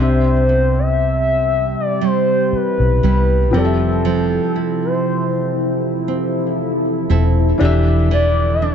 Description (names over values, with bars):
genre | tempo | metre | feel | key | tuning
R&B | 59 BPM | 4/4 | swing 54% on 16ths | C major | A4 = 436 Hz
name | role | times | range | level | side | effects
gliding portamento lead | melody | 0.0-8.7 s | A4 to E5 | -19 LUFS | left 1 dB | chorus
felt-muted upright piano | accompaniment | 0.0-8.7 s | C3 to E5 | -24 LUFS | left 4 dB | none
deep dark ambient pad | sustained chords | 1.2-8.7 s | C3 to D5 | -22 LUFS | left 1 dB | chorus, built-in reverb
nylon-string guitar | arpeggios | 0.0-8.7 s | C3 to A4 | -22 LUFS | right 8 dB | none
vintage muted fingered electric bass | bass | 0.0-8.7 s | E1 to C2 | -16 LUFS | left 1 dB | none
room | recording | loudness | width
light reverb, small room ambience | nothing above 7.7 kHz | -14 LUFS | side -8 dB against mid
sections
0.0-8.7 A section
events
none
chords
0.0 Cmaj7; 3.5 Fmaj7; 7.6 Em7